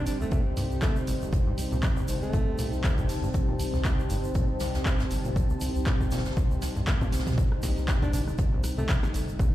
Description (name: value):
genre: acid house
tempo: 119 BPM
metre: 4/4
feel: swing 56% on 16ths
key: unclear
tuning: A4 = 439 Hz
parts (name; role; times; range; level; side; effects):
- warm alto saxophone; melody; 0.0-2.7, 8.0-8.9 s; A3 to D4; -37 LUFS; equal; digital delay
- warm analog pad; sustained chords; 0.0-9.5 s; C3 to Eb4; -35 LUFS; equal; chorus, sidechain pumping
- granular cloud pad; texture; 0.0-9.5 s; Eb4 to A5; -36 LUFS; left 1 dB; built-in reverb, sidechain pumping
- round analog bass; bass; 0.1-9.3 s; G1 to C2; -31 LUFS; equal; sidechain pumping
- jazz brush drum kit; drums; 0.1-9.5 s; hi-hat, snare drum; -43 LUFS; equal; sidechain pumping on hats, high-pass filter on hats, high-pass filter on snare, high-pass filter on room
- punchy analog drum machine; drums; 0.1-9.5 s; handclaps, hi-hat, rim click, snare drum, toms; -36 LUFS; equal; none
- egg shaker; percussion; 0.1-9.5 s; none; -47 LUFS; right 2 dB; none
- acid bass, saw; riff; 0.2-9.5 s; Bb1 to C3; -34 LUFS; equal; overdrive, sidechain pumping
- electronic kick drum; drums; 0.3-9.5 s; none; -26 LUFS; equal; none
room: light reverb, small room ambience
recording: played on a big sound system in a bare room, large studio reverb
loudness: -24 LUFS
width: side -14 dB against mid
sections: 0.0-7.4 A section; 7.4-9.5 B section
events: drum fill 6.9-7.4; drop 7.4-9.5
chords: 0.0 Cm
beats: 0.32 0.82 | 1.33 1.83 2.33 2.84 | 3.34 3.85 4.35 4.86 | 5.36 5.87 6.37 6.87 | 7.38 7.88 8.39 8.89 | 9.39